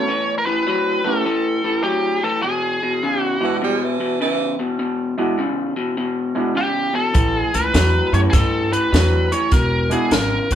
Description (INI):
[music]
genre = electric blues shuffle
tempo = 102 BPM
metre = 4/4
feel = swing 66% on 8ths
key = E mixolydian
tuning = A4 = 444 Hz
[part]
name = biting lead guitar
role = melody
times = 0.0-10.6 s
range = G4 to C#5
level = -21 LUFS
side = equal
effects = overdrive
[part]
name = clear baby grand piano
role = accompaniment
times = 0.0-10.1 s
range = G#3 to G4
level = -24 LUFS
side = right 4 dB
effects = none
[part]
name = electric guitar through a small old amp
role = riff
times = 0.0-10.6 s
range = E2 to F#3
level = -21 LUFS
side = left 2 dB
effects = none
[part]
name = bright tenor saxophone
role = second line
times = 3.4-4.6 s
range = E3 to G3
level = -22 LUFS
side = right 6 dB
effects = none
[part]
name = compact cocktail drum kit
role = drums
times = 7.1-10.6 s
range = hi-hat, kick drum, snare drum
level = -19 LUFS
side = equal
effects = none
[part]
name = upright bass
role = bass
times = 7.2-10.6 s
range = E1 to G2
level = -20 LUFS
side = equal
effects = none
[sound]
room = moderate large studio reverb, RT60 0.9 s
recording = band playing live in one room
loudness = -17 LUFS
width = side -10 dB against mid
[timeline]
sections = 0.0-10.6 A section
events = none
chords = 0.1 Asus2; 2.4 E; 7.2 A9; 9.5 E9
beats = | 0.08 0.67 1.25 1.84 | 2.43 3.02 3.61 4.20 | 4.79 5.38 5.97 6.56 | 7.16 7.75 8.34 8.93 | 9.53 10.12